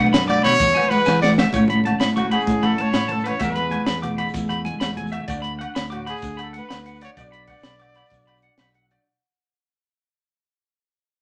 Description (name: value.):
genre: highlife guitar band.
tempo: 128 BPM (dotted quarters).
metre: 12/8.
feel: straight.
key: A major.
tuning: A4 = 441 Hz.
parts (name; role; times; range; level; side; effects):
fingerpicked steel-string acoustic guitar; accompaniment; 0.0-9.1 s; A2 to B4; -32 LUFS; equal; none.
electric guitar at the edge of break-up; arpeggios; 0.0-9.0 s; B4 to D6; -29 LUFS; equal; none.
fingered electric bass; bass; 0.0-9.0 s; B1 to E3; -29 LUFS; equal; none.
tight funk drum kit; drums; 0.1-9.0 s; hi-hat, kick drum, ride cymbal, snare drum; -27 LUFS; equal; none.
congas; percussion; 0.1-5.3 s; none; -27 LUFS; equal; none.
maracas; percussion; 0.1-8.7 s; none; -44 LUFS; equal; none.
clear trumpet; melody; 0.3-8.7 s; F#4 to D5; -24 LUFS; equal; none.
agogo bells; percussion; 0.3-9.1 s; none; -33 LUFS; equal; none.
room: wet studio reverb, RT60 0.7 s.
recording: none.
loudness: -21 LUFS.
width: mono.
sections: 0.0-1.5 A section; 1.5-9.1 B section.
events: trumpet solo 0.0-1.5; drum fill 1.1-1.5; fade-out 1.5-9.1.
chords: 0.0 Bm; 0.6 Eadd9; 1.5 Aadd9; 3.4 E; 5.3 D6; 7.2 Bm.